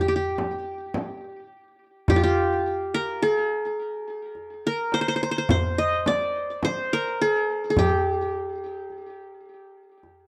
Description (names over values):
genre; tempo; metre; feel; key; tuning
Arabic maqam ensemble; 106 BPM (eighths); 10/8; straight; G maqam bayati; A4 = 438 Hz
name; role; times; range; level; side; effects
qanun; melody; 0.0-10.3 s; F4 to Eb5; -26 LUFS; equal; tape echo
darbuka; percussion; 0.4-10.2 s; none; -30 LUFS; equal; none
frame drum; percussion; 0.4-8.0 s; none; -30 LUFS; equal; none
room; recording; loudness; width
light reverb; dry, close 1970s-style studio recording; -25 LUFS; mono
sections
0.0-10.3 A section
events
none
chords
none